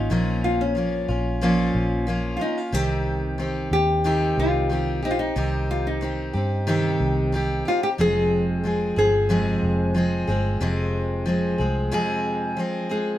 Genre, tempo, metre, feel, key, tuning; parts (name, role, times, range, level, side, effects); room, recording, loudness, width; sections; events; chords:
acoustic pop; 91 BPM; 4/4; straight; A4 = 444 Hz
nylon-string guitar; melody; 0.0-13.2 s; Db4 to Ab4; -25 LUFS; left 2 dB
picked steel-string acoustic guitar; accompaniment; 0.0-13.2 s; F2 to Ab4; -23 LUFS; equal
vintage muted fingered electric bass; bass; 0.0-11.9 s; F1 to G2; -26 LUFS; equal
light reverb; -20 LUFS; side -13 dB against mid
0.0-13.2 A section
0.0 Bbm; 2.7 Cm; 8.0 Fm